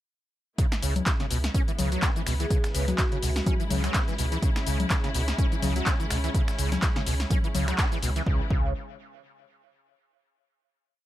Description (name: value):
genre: acid house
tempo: 125 BPM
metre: 4/4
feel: swing 56% on 16ths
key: C# minor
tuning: A4 = 439 Hz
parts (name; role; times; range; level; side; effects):
- clear studio string section; sustained chords; 0.6-8.5 s; C#3 to E4; -36 LUFS; left 1 dB; sidechain pumping
- overdriven acid bass; riff; 0.6-8.7 s; B2 to C#4; -33 LUFS; equal; distortion, tube saturation, ensemble chorus, sidechain pumping, ping-pong delay
- dusty soul sampler-style drum kit; drums; 0.6-8.3 s; hi-hat, snare drum; -42 LUFS; right 2 dB; none
- electronic kick drum; drums; 0.6-8.6 s; none; -26 LUFS; equal; none
- punchy analog drum machine; drums; 0.6-8.2 s; congas, finger snaps, handclaps, hi-hat, shaker, snare drum; -30 LUFS; left 2 dB; none
- warm sub bass; bass; 0.8-8.7 s; C#2; -28 LUFS; equal; sidechain pumping
- vibraphone with medium mallets; melody; 2.4-3.5 s; F#4 to B4; -35 LUFS; right 1 dB; dub echo
room: little or no reverb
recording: none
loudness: -24 LUFS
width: side -14 dB against mid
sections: 0.6-8.3 drop; 8.3-10.2 final chord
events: drop 0.6-8.3; band accent 7.8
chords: 0.6 C#m7; 8.3 N.C.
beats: | 0.58 1.06 1.54 2.02 | 2.50 2.98 3.46 3.94 | 4.42 4.91 5.38 5.87 | 6.34 6.83 7.30 7.79 | 8.27